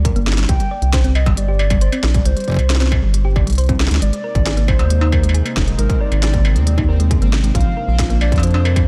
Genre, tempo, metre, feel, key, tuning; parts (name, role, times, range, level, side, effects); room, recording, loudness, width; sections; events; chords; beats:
IDM; 136 BPM; 4/4; straight; A4 = 439 Hz
thumb-piano-like synth pluck; arpeggios; 0.0-8.8 s; F3 to D5; -28 LUFS; equal; chorus, tape echo, shimmer reverb
rubbery square bass; bass; 0.0-8.9 s; Eb1 to F2; -18 LUFS; equal
electronic kick drum; drums; 0.1-8.9 s; -21 LUFS; equal; distortion
industrial drum kit; drums; 0.1-8.9 s; hi-hat, snare drum, struck metal; -26 LUFS; equal
warbly nostalgic lead; melody; 0.5-8.9 s; Bb4 to G5; -29 LUFS; equal; chorus, digital delay, shimmer reverb
warbly tape-like pad; sustained chords; 4.2-8.9 s; C3 to Eb4; -30 LUFS; equal; chorus, built-in reverb, shimmer reverb
pulsing gated texture; texture; 5.0-8.9 s; C4 to C5; -38 LUFS; equal
digital ambience; -16 LUFS; mono
0.0-8.9 A section
0.5 Csus2; 4.0 Abadd9; 7.6 Bbadd9
0.05 | 0.49 0.93 1.37 1.81 | 2.26 2.70 3.14 3.58 | 4.02 4.46 4.90 5.34 | 5.79 6.23 6.67 7.11 | 7.55 7.99 8.43 8.87